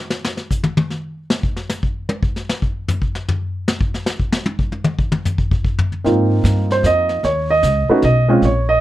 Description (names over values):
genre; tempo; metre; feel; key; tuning
jazz piano trio; 151 BPM; 3/4; swing 65% on 8ths; Ab major; A4 = 440 Hz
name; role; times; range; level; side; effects
vintage brush drum kit; drums; 0.1-8.8 s; brushed snare drum, hi-hat, kick drum, snare drum, toms; -19 LUFS; left 1 dB; none
warm baby grand piano; melody; 6.0-8.8 s; Ab3 to Eb5; -15 LUFS; right 2 dB; none
upright bass; bass; 6.0-8.8 s; Bb1 to Ab2; -17 LUFS; equal; none
room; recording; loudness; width
little or no reverb; close, detailed microphones; -16 LUFS; side -14 dB against mid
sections
0.0-6.0 A section; 6.0-8.8 B section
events
drum solo 0.0-6.0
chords
0.0 N.C.; 6.0 Ab69; 7.2 Badd9